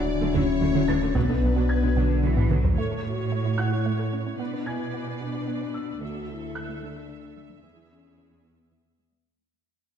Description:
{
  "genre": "cinematic, hybrid orchestral and electronic film score",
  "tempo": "74 BPM (dotted quarters)",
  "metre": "6/8",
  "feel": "straight",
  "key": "B dorian",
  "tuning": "A4 = 441 Hz",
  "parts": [
    { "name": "rich symphonic violin section", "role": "melody", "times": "0.0-2.5 s", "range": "B4 to D5", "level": "-39 LUFS", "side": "left 4 dB", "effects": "none" },
    { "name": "rich symphonic violin section", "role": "second line", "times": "0.0-2.5 s", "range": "B4 to D5", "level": "-38 LUFS", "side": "left 2 dB", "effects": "none" },
    { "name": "dark French horn section", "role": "sustained chords", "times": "0.0-9.2 s", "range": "B3 to A4", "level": "-29 LUFS", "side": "left 8 dB", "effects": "none" },
    { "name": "warm trombone section", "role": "sustained chords", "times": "0.0-2.5 s", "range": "F#3 to E4", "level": "-34 LUFS", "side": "right 2 dB", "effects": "none" },
    { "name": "warm sub bass", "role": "bass", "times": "0.0-2.8 s", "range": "D1 to B1", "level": "-26 LUFS", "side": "equal", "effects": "none" },
    { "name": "felt-muted upright piano", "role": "texture", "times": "0.0-9.3 s", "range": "F#5 to A6", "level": "-39 LUFS", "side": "equal", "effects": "ping-pong delay" },
    { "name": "rich symphonic viola section", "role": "accompaniment", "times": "0.2-9.0 s", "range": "D3 to E5", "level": "-36 LUFS", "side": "right 2 dB", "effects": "none" },
    { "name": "woody wave-folded pluck", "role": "arpeggios", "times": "0.2-9.2 s", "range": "D3 to B4", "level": "-35 LUFS", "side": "right 4 dB", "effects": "chorus, ping-pong delay" },
    { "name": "rich symphonic cello section", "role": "bass", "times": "0.2-9.1 s", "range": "D2 to F#3", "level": "-30 LUFS", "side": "right 4 dB", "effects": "none" },
    { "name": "dark symphonic double bass section", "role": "bass", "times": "0.3-2.6 s", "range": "B1 to D2", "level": "-31 LUFS", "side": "right 4 dB", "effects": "none" },
    { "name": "taiko ensemble", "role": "drums", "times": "1.2-2.9 s", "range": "none", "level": "-27 LUFS", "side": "equal", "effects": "none" }
  ],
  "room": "moderate scoring stage reverb, RT60 1.9 s",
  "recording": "dark, warm production, nothing above 10.5 kHz",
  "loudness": "-23 LUFS",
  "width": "side -8 dB against mid",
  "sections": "0.0-2.8 A section; 2.8-9.3 B section",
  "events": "drum fill 2.4-2.8; fade-out 2.8-9.3",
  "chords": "0.0 Dadd9; 1.1 Bm; 2.8 A; 4.4 Bm; 6.0 Dadd9; 7.6 E"
}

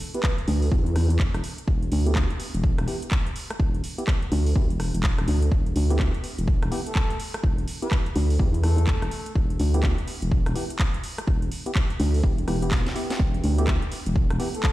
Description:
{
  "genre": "bass house",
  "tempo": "125 BPM",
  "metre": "4/4",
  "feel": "swing 61% on 16ths",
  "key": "E minor",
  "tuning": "A4 = 438 Hz",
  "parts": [
    { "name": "house drum kit", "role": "drums", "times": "0.0-14.7 s", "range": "handclaps, hi-hat, rim click, snare drum", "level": "-33 LUFS", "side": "equal", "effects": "none" },
    { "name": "breathy flute-like synth lead", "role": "melody", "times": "0.1-0.3, 6.9-9.3, 14.5-14.7 s", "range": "A4 to B4", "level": "-35 LUFS", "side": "equal", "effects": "wide subtle chorus, tape echo" },
    { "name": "percussive organ stab", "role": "stabs", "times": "0.1-14.5 s", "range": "B3 to G4", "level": "-34 LUFS", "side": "equal", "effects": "chorus, sidechain pumping, tape echo" },
    { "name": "electronic kick drum", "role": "drums", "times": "0.2-14.7 s", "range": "none", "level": "-23 LUFS", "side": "equal", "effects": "none" },
    { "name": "vowel-sweep wobble bass", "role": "bass", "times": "0.5-14.4 s", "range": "E1 to E2", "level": "-23 LUFS", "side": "equal", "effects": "chorus, tube saturation, sidechain pumping" }
  ],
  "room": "little or no reverb",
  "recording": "played on a big sound system in a bare room, stone room reverb",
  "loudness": "-21 LUFS",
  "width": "side -16 dB against mid",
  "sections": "0.0-14.7 A section",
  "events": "filter sweep on synth stab 0.0-14.7; drum fill 12.7-13.2",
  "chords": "0.0 Em"
}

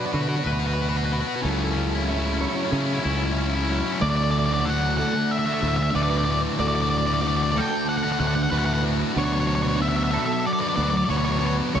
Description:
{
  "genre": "rock",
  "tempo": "93 BPM",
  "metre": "4/4",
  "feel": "straight",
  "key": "D major",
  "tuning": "A4 = 440 Hz",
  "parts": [
    { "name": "clean electric guitar", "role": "arpeggios", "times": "0.0-11.8 s", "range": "D4 to E5", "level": "-34 LUFS", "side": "right 5 dB", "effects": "ensemble chorus, slapback echo" },
    { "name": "twangy electric guitar", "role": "arpeggios", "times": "0.0-4.0 s", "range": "F#2 to B4", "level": "-33 LUFS", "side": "left 4 dB", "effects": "spring reverb, slapback echo" },
    { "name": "thick fuzz guitar", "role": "riff", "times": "0.0-11.8 s", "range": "D2 to B4", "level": "-25 LUFS", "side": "left 1 dB", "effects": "distortion" },
    { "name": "growling fingered electric bass", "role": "bass", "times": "0.1-11.8 s", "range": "C#2 to D3", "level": "-25 LUFS", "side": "equal", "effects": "overdrive" },
    { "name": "octave-fuzz lead guitar", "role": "melody", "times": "4.0-11.8 s", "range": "C#5 to G5", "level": "-25 LUFS", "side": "left 1 dB", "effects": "distortion, slapback echo" }
  ],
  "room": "light reverb, digital ambience",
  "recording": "none",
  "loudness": "-21 LUFS",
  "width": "side -8 dB against mid",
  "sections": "0.0-4.0 A section; 4.0-11.8 B section",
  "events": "build-up 0.0-4.0",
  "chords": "0.0 Bm; 1.4 F#m7/C#; 4.0 D"
}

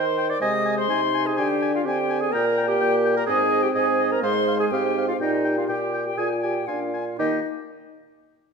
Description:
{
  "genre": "quick classical-period movement for wind quintet",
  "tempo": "124 BPM",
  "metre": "4/4",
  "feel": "straight",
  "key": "Eb major",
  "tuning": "A4 = 440 Hz",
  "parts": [
    { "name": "silver concert flute", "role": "melody", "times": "0.0-7.5 s", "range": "Eb5 to Eb6", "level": "-29 LUFS", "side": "left 9 dB", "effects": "none" },
    { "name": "warm oboe", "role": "second line", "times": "0.0-7.4 s", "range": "G4 to Ab5", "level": "-30 LUFS", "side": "left 4 dB", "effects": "none" },
    { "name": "warm clarinet", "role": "accompaniment", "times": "0.0-7.4 s", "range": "Eb4 to Eb5", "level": "-24 LUFS", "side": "right 4 dB", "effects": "none" },
    { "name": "dark bassoon", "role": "bass", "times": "0.0-7.4 s", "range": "Ab2 to Eb3", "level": "-27 LUFS", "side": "right 1 dB", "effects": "none" },
    { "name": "mellow French horn", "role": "accompaniment", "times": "0.4-7.4 s", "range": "Ab3 to G4", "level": "-27 LUFS", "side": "left 2 dB", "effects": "none" }
  ],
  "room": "wet scoring stage reverb, RT60 1.8 s",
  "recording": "minimal, uncompressed stereo recording",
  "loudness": "-20 LUFS",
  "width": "side -5 dB against mid",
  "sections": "0.0-7.2 A section; 7.2-8.5 B section",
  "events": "none",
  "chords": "0.4 Ab/C; 1.4 Fm69/D; 2.3 Gm/Bb; 3.3 Ab; 4.2 Fm/Ab; 5.2 Eb/Bb; 6.2 Bb5; 7.2 Eb5"
}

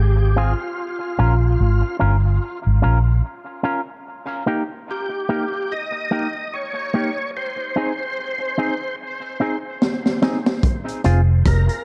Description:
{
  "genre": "dub reggae",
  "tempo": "73 BPM",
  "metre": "4/4",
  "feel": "swing 58% on 16ths",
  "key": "F minor",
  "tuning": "A4 = 440 Hz",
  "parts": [
    { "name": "overdriven tonewheel organ", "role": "melody", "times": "0.0-11.8 s", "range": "F4 to Eb5", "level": "-29 LUFS", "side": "equal", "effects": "chorus vibrato, slow rotary speaker, dub echo" },
    { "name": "vintage muted fingered electric bass", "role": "bass", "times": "0.0-3.2, 11.1-11.7 s", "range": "F1 to Bb1", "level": "-18 LUFS", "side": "equal", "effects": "none" },
    { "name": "electric guitar with an envelope filter", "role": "accompaniment", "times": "0.4-11.2 s", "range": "Bb3 to Bb4", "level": "-28 LUFS", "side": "equal", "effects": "dub echo" },
    { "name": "crunchy breakbeat drum kit", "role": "drums", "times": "9.8-11.8 s", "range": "hi-hat, kick drum, rim click, snare drum", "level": "-21 LUFS", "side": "equal", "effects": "none" }
  ],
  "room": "light reverb, small room ambience",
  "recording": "dark, warm production",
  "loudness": "-21 LUFS",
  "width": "mono",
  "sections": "0.0-10.6 A section; 10.6-11.8 B section",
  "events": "break 4.1-10.6; drum fill 9.8-10.6",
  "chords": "0.0 Fm; 0.8 Bbm; 4.1 Eb; 7.3 Ab; 10.6 F5"
}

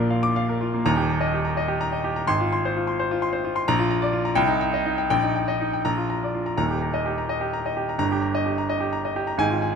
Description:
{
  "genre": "classical, virtuoso piano study",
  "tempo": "79-88 BPM (dotted quarters)",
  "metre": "6/8",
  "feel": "rubato",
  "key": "Eb major",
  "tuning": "A4 = 440 Hz",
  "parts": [
    { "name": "clear baby grand piano", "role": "solo", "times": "0.0-9.8 s", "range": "Eb1 to D6", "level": "-21 LUFS", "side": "equal", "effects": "none" }
  ],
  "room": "moderate recital hall reverb, RT60 1.7 s",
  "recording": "close, detailed microphones",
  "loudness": "-21 LUFS",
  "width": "side -6 dB against mid",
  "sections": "0.9-9.8 A section",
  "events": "none",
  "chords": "0.0 Bb; 0.9 Eb; 2.3 Fm/Ab; 3.7 Bb; 4.4 Cm; 5.1 Eb/Bb; 5.8 Bb; 6.6 Eb; 8.0 Eb/G"
}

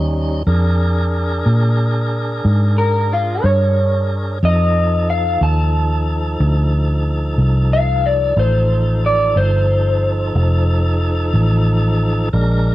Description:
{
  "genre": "slow blues",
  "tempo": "61 BPM (dotted quarters)",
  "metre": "12/8",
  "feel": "straight",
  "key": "unclear",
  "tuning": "A4 = 436 Hz",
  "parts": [
    { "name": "tonewheel organ", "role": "sustained chords", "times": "0.0-12.7 s", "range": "F3 to Bb4", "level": "-23 LUFS", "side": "equal", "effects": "overdrive, fast rotary speaker, cassette tape" },
    { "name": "vintage muted fingered electric bass", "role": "bass", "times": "0.0-12.7 s", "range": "F1 to Bb2", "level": "-15 LUFS", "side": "equal", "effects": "none" },
    { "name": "electric guitar through a small old amp", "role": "melody", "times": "2.8-11.3 s", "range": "F4 to A5", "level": "-18 LUFS", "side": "left 1 dB", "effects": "wide subtle chorus, cassette tape" }
  ],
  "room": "little or no reverb",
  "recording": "home recording on cassette",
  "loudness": "-14 LUFS",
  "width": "side -16 dB against mid",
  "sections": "0.0-12.7 A section",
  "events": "clean electric guitar solo 0.0-12.7",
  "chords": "0.5 Bb7; 4.4 F7"
}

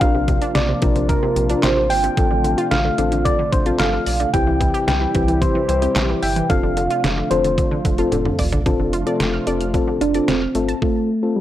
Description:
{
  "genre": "synth-pop",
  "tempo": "111 BPM",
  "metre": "4/4",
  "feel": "straight",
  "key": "F major",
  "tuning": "A4 = 441 Hz",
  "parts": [
    { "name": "soft struck synth lead", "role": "melody", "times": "0.0-11.4 s", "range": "G3 to G5", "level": "-21 LUFS", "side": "equal", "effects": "chorus, phaser" },
    { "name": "mellow FM electric piano", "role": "accompaniment", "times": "0.0-11.4 s", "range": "C4 to Bb4", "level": "-23 LUFS", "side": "left 4 dB", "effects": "chorus" },
    { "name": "brassy analog pad", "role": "sustained chords", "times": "0.0-10.8 s", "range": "C3 to G4", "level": "-25 LUFS", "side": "right 1 dB", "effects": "chorus" },
    { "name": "wide unison pluck", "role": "arpeggios", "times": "0.0-10.8 s", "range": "C3 to F6", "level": "-26 LUFS", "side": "right 2 dB", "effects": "analog delay" },
    { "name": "round analog bass", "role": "bass", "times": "0.0-10.7 s", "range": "E1 to C2", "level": "-24 LUFS", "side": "equal", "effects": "tube saturation" },
    { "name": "detuned 8-bit digital drum machine", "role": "drums", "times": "0.0-10.9 s", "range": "handclaps, hi-hat, kick drum, snare drum, toms", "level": "-22 LUFS", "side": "equal", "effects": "none" }
  ],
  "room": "little or no reverb",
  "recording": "dry, gritty hardware recording",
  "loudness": "-16 LUFS",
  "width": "side -12 dB against mid",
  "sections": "0.0-8.7 A section; 8.7-10.8 B section",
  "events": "drum fill 8.1-8.7",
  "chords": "0.0 Bbadd9; 4.3 C; 6.5 F6; 10.8 F"
}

